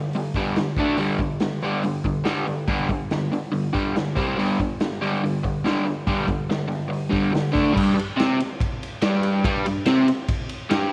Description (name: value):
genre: garage rock duo or trio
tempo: 142 BPM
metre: 4/4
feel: straight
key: unclear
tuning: A4 = 441 Hz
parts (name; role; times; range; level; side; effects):
- crunchy overdriven guitar; riff; 0.0-10.9 s; G2 to D4; -24 LUFS; equal; none
- raw garage drum kit; drums; 0.1-10.8 s; crash cymbal, hi-hat, kick drum, ride cymbal, snare drum; -29 LUFS; equal; none
room: light reverb, small room ambience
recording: none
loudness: -23 LUFS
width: mono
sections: 0.0-7.8 A section; 7.8-10.9 B section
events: none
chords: 0.0 G5; 0.8 D5; 1.0 G5; 4.2 C5; 4.4 G5; 7.6 D5; 7.8 Gsus4